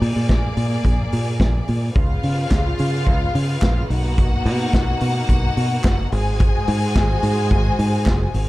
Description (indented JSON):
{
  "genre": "disco",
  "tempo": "108 BPM",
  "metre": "4/4",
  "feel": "straight",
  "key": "unclear",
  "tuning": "A4 = 440 Hz",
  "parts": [
    { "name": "clear symphonic string section", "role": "sustained chords", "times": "0.0-8.5 s", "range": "Db3 to D5", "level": "-27 LUFS", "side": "equal", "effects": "none" },
    { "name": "fingered electric bass", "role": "bass", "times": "0.0-8.5 s", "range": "F#1 to Db3", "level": "-20 LUFS", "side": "equal", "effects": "none" },
    { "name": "vintage drum kit", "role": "drums", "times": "0.0-8.5 s", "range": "hi-hat, kick drum, snare drum", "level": "-20 LUFS", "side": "equal", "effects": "none" },
    { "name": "rich studio string section", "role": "second line", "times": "2.0-8.5 s", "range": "F4 to Ab5", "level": "-26 LUFS", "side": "left 2 dB", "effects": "none" },
    { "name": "group handclap", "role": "percussion", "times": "2.5-8.2 s", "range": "none", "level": "-37 LUFS", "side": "right 2 dB", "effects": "none" }
  ],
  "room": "small room ambience",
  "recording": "dark, warm production",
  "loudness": "-16 LUFS",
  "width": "side -18 dB against mid",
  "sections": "0.0-2.0 A section; 2.0-8.5 B section",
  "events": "none",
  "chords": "0.0 Bb7; 2.0 Db7; 3.9 Bmaj7; 6.1 Ab7"
}